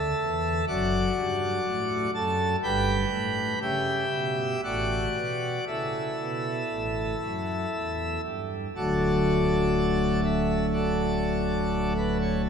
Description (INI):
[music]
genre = classical, chorale-style piece for pipe organ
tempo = 57-62 BPM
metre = 4/4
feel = rubato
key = D major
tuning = A4 = 440 Hz
[part]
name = pipe organ, plenum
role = solo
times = 0.0-12.5 s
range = D1 to B5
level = -24 LUFS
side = equal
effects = none
[sound]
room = wet cathedral reverb, RT60 5.1 s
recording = none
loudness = -24 LUFS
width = side -6 dB against mid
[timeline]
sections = 0.0-8.8 A section; 8.8-12.5 B section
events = none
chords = 0.0 A5; 0.7 D/F#; 2.6 Em/G; 4.6 Asus4; 6.7 A5; 8.8 D